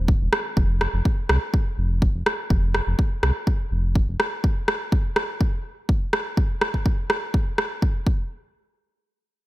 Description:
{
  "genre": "afro house",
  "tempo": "124 BPM",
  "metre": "4/4",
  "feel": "straight",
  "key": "unclear",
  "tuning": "A4 = 440 Hz",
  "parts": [
    { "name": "warm analog pad", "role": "sustained chords", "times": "0.0-0.6 s", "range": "Eb3 to C5", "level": "-53 LUFS", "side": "right 1 dB", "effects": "none" },
    { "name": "round analog bass", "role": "bass", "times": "0.0-4.2 s", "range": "Eb1 to C2", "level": "-22 LUFS", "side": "equal", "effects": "sidechain pumping" },
    { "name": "electronic kick drum", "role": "drums", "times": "0.1-8.2 s", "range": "none", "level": "-21 LUFS", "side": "equal", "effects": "studio reverb" },
    { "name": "electronic rim click", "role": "drums", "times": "0.3-7.7 s", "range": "none", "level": "-25 LUFS", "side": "equal", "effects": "studio reverb" }
  ],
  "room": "light reverb, small room ambience",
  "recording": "none",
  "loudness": "-20 LUFS",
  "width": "side -17 dB against mid",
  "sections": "0.0-8.3 A section; 8.3-9.5 B section",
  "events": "none",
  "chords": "0.0 Eb; 0.6 F5; 4.4 N.C."
}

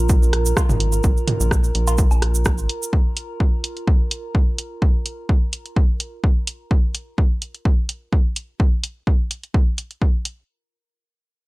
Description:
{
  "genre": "minimal techno",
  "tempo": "127 BPM",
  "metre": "4/4",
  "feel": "swing 54% on 16ths",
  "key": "unclear",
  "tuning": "A4 = 440 Hz",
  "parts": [
    { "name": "rubbery square bass", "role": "bass", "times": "0.0-2.7 s", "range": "Ab1 to Bb1", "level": "-20 LUFS", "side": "equal", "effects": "sidechain pumping" },
    { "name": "warbly tape-like pad", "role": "texture", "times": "0.0-6.7 s", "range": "F4 to Bb5", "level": "-30 LUFS", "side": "right 2 dB", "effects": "chorus, built-in reverb, sidechain pumping" },
    { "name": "electronic kick drum", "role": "drums", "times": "0.1-10.1 s", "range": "none", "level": "-17 LUFS", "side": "equal", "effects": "none" },
    { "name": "cabasa", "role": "percussion", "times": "0.1-2.9 s", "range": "none", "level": "-28 LUFS", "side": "right 6 dB", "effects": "none" },
    { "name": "punchy analog drum machine", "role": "drums", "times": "0.3-10.4 s", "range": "hi-hat, rim click", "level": "-24 LUFS", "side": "right 1 dB", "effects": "none" },
    { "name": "electronic cowbell, toms and woodblock", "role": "percussion", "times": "0.6-2.2 s", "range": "none", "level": "-26 LUFS", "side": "right 1 dB", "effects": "tape echo" }
  ],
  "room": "little or no reverb",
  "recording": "none",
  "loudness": "-18 LUFS",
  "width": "side -22 dB against mid",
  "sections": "0.0-10.5 A section",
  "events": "fade-out on ambient pad 0.0-6.7",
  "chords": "0.0 Bb5"
}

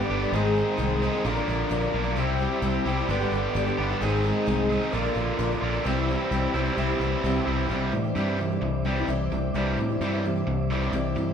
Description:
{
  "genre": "folk rock and heartland rock",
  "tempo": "130 BPM",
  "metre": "4/4",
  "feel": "straight",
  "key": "C major",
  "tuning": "A4 = 440 Hz",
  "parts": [
    { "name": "picked twelve-string acoustic guitar", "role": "accompaniment", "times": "0.0-11.3 s", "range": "G2 to Bb4", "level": "-29 LUFS", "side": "left 2 dB", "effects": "none" },
    { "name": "mellow tonewheel organ", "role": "sustained chords", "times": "0.0-11.3 s", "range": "Bb4 to E6", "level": "-35 LUFS", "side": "right 1 dB", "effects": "slow rotary speaker" },
    { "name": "raw garage guitar", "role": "riff", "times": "0.0-11.3 s", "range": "G2 to Bb4", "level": "-27 LUFS", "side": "right 1 dB", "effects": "overdrive" },
    { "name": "fingered electric bass", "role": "bass", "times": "0.1-11.3 s", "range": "G1 to A2", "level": "-28 LUFS", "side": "equal", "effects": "none" }
  ],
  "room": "moderate large studio reverb, RT60 1.2 s",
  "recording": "band playing live in one room",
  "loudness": "-23 LUFS",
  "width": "side -7 dB against mid",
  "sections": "0.0-7.7 A section; 7.7-11.3 B section",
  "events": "none",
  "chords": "0.3 Ab; 1.3 Bb; 2.2 C; 3.1 G; 4.0 Ab; 4.9 Bb; 5.9 C; 7.7 Cadd9"
}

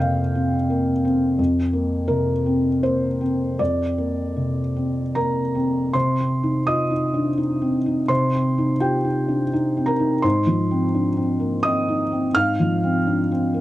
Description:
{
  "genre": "neoclassical minimalist piano",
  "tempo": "84 BPM",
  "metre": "3/4",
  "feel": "rubato",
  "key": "C minor",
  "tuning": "A4 = 440 Hz",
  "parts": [
    { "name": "felt-muted upright piano", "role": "solo", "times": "0.0-13.6 s", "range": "F2 to F6", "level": "-19 LUFS", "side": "equal", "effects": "none" }
  ],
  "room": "little or no reverb",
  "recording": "dry, close 1970s-style studio recording",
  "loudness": "-19 LUFS",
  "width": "side -15 dB against mid",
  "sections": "0.0-5.9 A section; 5.9-13.6 B section",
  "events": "none",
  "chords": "0.0 Bbadd9/F; 5.9 Cm; 10.2 Ab6"
}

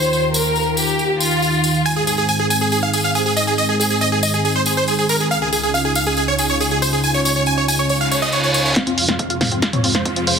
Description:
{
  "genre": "uplifting trance",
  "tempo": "139 BPM",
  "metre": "4/4",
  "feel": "straight",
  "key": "F minor",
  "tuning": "A4 = 441 Hz",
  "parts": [
    { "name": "warm studio violin section", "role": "second line", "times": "0.0-1.8 s", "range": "F4 to C5", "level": "-19 LUFS", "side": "left 1 dB", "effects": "ping-pong delay" },
    { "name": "lush unison pad", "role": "sustained chords", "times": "0.0-10.4 s", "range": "Db2 to Ab4", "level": "-21 LUFS", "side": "right 1 dB", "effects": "chorus, sidechain pumping" },
    { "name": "tambourine", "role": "percussion", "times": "0.0-8.7 s", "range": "none", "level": "-23 LUFS", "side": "left 2 dB", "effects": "none" },
    { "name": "big supersaw lead", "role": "melody", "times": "1.9-10.3 s", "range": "F4 to Ab5", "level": "-18 LUFS", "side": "right 2 dB", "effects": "sidechain pumping, low-pass filter, ping-pong delay" },
    { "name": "reverse cymbal and riser", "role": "sound effects", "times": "8.0-10.4 s", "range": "none", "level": "-24 LUFS", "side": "right 1 dB", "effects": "none" },
    { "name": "wide unison pluck", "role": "arpeggios", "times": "8.8-10.3 s", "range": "C4 to F5", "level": "-24 LUFS", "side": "left 4 dB", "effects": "wide subtle chorus, sidechain pumping, ping-pong delay" },
    { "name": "electronic kick drum", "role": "drums", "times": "8.8-10.1 s", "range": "none", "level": "-29 LUFS", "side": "equal", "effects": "high-pass filter on kick, high-pass filter on room" },
    { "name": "punchy analog drum machine", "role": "drums", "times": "8.8-10.4 s", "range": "hi-hat, snare drum, toms", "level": "-18 LUFS", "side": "equal", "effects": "sidechain pumping on cymbals, low-pass filter on cymbals, low-pass filter on snare, sidechain pumping on hats, low-pass filter on hats, sidechain pumping on toms, low-pass filter on toms" }
  ],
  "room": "moderate lush hall reverb, RT60 1.9 s",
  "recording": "dense, heavily limited modern master",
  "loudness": "-15 LUFS",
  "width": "side -6 dB against mid",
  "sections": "0.0-8.8 A section; 8.8-10.4 B section",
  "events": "reverse cymbal 8.0-8.8; build-up 8.8-10.4; drum fill 8.8-10.4; riser 8.8-10.4; filter sweep on supersaw synth 8.8-10.4",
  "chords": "0.0 Ebadd9; 1.9 Ab; 5.3 Dbadd9; 8.8 Fm"
}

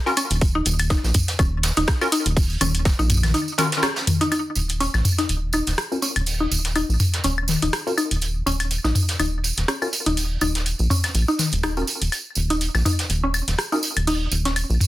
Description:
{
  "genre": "minimal techno",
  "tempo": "123 BPM",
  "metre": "4/4",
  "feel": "swing 56% on 16ths",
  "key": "Eb minor",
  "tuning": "A4 = 436 Hz",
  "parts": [
    { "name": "wavetable chord stab", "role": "stabs", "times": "0.1-13.8 s", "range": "Db4 to Bb4", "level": "-25 LUFS", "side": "left 1 dB", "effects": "phaser, cassette tape, digital delay" },
    { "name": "vintage brush drum kit", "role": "drums", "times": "0.1-14.9 s", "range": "hi-hat, snare drum", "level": "-33 LUFS", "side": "right 2 dB", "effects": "sidechain pumping on hats, high-pass filter on hats, low-pass filter on hats, soft clipping on snare, high-pass filter on snare, low-pass filter on snare, high-pass filter on room, low-pass filter on room" },
    { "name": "tambourine", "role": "percussion", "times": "0.1-14.9 s", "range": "none", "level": "-28 LUFS", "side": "right 3 dB", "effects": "none" },
    { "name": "mallet-like synth pluck", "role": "riff", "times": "0.2-14.5 s", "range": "Db4 to Eb4", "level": "-25 LUFS", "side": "left 1 dB", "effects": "chorus, sidechain pumping, digital delay" },
    { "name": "booming analog drum machine", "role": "drums", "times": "0.2-14.7 s", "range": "hi-hat, rim click", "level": "-26 LUFS", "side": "equal", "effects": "soft clipping on snare" },
    { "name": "electronic claves and toms", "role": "percussion", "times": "0.2-14.9 s", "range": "none", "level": "-24 LUFS", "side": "left 2 dB", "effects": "overdrive" },
    { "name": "rubbery square bass", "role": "bass", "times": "0.3-14.8 s", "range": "Eb1 to Bb1", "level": "-23 LUFS", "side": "equal", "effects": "tube saturation, sidechain pumping" },
    { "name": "electronic kick drum", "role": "drums", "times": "0.4-3.0 s", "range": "none", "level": "-20 LUFS", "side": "equal", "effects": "none" }
  ],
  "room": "moderate studio ambience, RT60 0.5 s",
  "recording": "dense, heavily limited modern master",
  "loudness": "-19 LUFS",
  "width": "side -16 dB against mid",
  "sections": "0.0-4.3 A section; 4.3-14.9 B section",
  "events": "band accent 3.8",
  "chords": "0.0 Eb7(no3); 4.3 N.C."
}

